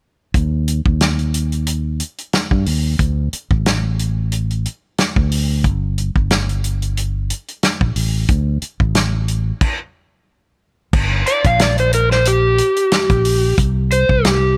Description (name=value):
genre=straight-eighth soul blues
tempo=91 BPM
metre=4/4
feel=swing 55% on 16ths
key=G minor from 10.9 s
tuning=A4 = 435 Hz
part: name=fingered electric bass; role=bass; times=0.3-14.6 s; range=G1 to G2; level=-20 LUFS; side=equal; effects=none
part: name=warm soul drum kit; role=drums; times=0.3-14.4 s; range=crash cymbal, hi-hat, kick drum, snare drum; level=-20 LUFS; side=equal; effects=none
part: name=overdriven slide guitar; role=melody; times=11.3-14.6 s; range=G4 to F5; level=-18 LUFS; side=equal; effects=slapback echo
room=little or no reverb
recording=none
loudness=-17 LUFS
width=mono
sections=0.3-10.9 A section; 10.9-14.6 B section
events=stop 9.6-10.9; electric slide guitar solo 10.9-14.6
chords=0.3 N.C.; 3.0 D5; 5.6 N.C.; 8.3 D5; 10.9 Gm; 13.6 C5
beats=| 0.34 1.00 1.67 2.33 | 2.99 3.65 4.31 4.98 | 5.64 6.30 6.96 7.63 | 8.29 8.95 9.61 10.27 | 10.94 11.60 12.26 12.92 | 13.58 14.24